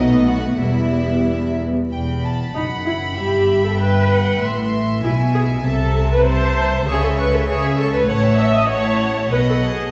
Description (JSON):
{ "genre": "quick classical-period movement for string orchestra", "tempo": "97 BPM", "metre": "2/4", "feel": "rubato", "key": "E minor", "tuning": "A4 = 440 Hz", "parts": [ { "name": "warm symphonic violin section", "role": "melody", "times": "0.0-9.9 s", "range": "D#5 to C#6", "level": "-33 LUFS", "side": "equal", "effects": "none" }, { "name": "rich chamber violin section", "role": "second line", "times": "0.0-9.9 s", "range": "D#4 to B5", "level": "-29 LUFS", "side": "equal", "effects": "none" }, { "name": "dark symphonic viola section", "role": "accompaniment", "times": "0.0-9.9 s", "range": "G3 to E5", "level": "-22 LUFS", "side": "equal", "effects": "none" }, { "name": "warm symphonic cello section", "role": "bass", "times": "0.0-9.9 s", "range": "E2 to C#3", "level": "-24 LUFS", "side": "equal", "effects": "none" }, { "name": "warm symphonic double bass section", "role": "bass", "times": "0.0-9.9 s", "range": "E1 to C#2", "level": "-24 LUFS", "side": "equal", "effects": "none" } ], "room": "wet recital hall reverb, RT60 1.7 s", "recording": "recorded in a church or concert hall, vinyl crackle, nothing above 8.0 kHz", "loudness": "-18 LUFS", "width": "mono", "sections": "0.0-1.9 A section; 1.9-9.9 A section", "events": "none", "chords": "0.0 B7; 0.6 Em; 2.6 B5/F#; 3.2 Em/G; 4.4 Am; 5.0 E/B; 5.7 Am/C; 6.9 C#m; 8.1 F#m7/A; 9.3 B", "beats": "| 0.61 1.26 | 1.92 2.55 | 3.17 3.79 | 4.42 5.04 | 5.66 6.27 | 6.88 7.49 | 8.09 8.71 | 9.32" }